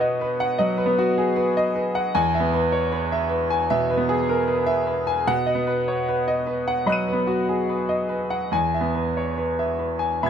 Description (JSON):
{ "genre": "neoclassical minimalist piano", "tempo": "70-78 BPM", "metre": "4/4", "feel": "rubato", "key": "unclear", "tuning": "A4 = 440 Hz", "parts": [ { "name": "bright grand piano", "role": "solo", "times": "0.0-10.3 s", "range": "E2 to D#7", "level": "-20 LUFS", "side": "equal", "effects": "none" } ], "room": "little or no reverb", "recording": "close, detailed microphones", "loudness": "-20 LUFS", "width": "side -8 dB against mid", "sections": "0.0-10.3 A section", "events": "none", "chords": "0.0 B; 2.2 E; 5.3 B; 8.5 E" }